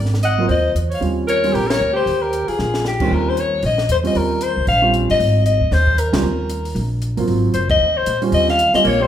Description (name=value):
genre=jazz, small-group swing and bop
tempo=230 BPM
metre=4/4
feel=swing 60% on 8ths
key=Eb mixolydian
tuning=A4 = 440 Hz
part: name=upright bass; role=bass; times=0.0-9.1 s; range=Gb1 to Bb2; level=-20 LUFS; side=equal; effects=none
part: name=compact cocktail drum kit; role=drums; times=0.1-8.9 s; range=crash cymbal, hi-hat, kick drum, ride cymbal, snare drum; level=-27 LUFS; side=equal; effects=none
part: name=breathy alto saxophone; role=second line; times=0.2-3.0, 8.8-9.1 s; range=G3 to Eb5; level=-22 LUFS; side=right 3 dB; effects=none
part: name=growling soprano saxophone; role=melody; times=0.3-9.1 s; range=G4 to Gb5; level=-18 LUFS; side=left 3 dB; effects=none
part: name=warm concert grand piano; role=accompaniment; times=0.4-8.8 s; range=Eb2 to F4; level=-22 LUFS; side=right 3 dB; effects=none
room=wet recital hall reverb, RT60 1.3 s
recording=recorded in a church or concert hall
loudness=-15 LUFS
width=side -10 dB against mid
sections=0.0-3.1 A section; 3.1-9.1 A section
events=band accent 1.7, 6.1, 7.7; drum fill 2.6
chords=0.0 Ab7; 1.0 Eb13; 2.6 Bbsus2; 3.1 Eb13; 5.2 Ab; 6.2 Eb5; 7.3 Ab13; 8.3 Eb13